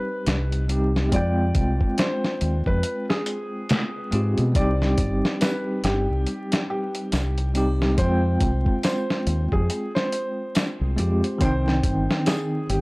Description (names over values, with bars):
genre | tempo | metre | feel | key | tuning
trip hop | 70 BPM | 4/4 | swing 60% on 16ths | C harmonic minor | A4 = 440 Hz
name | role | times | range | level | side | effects
felt-muted upright piano | melody | 0.0-12.8 s | G4 to D5 | -30 LUFS | equal | tape echo
bell-like tine electric piano | accompaniment | 0.0-12.8 s | Eb3 to G5 | -26 LUFS | equal | tremolo
deep dub fingered electric bass | bass | 0.3-12.8 s | G1 to B2 | -23 LUFS | equal | transformer saturation
dusty soul sampler-style drum kit | drums | 0.3-12.8 s | hi-hat, kick drum, snare drum | -24 LUFS | equal | none
tambourine and triangle | percussion | 5.4-12.5 s | none | -42 LUFS | right 2 dB | none
room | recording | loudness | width
digital ambience | dry, gritty hardware recording, transformer saturation, vinyl crackle | -20 LUFS | side -25 dB against mid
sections
0.0-12.8 A section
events
none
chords
0.0 Cm; 1.1 Fmadd9; 4.6 Cm; 8.0 Fmadd9; 11.4 Cm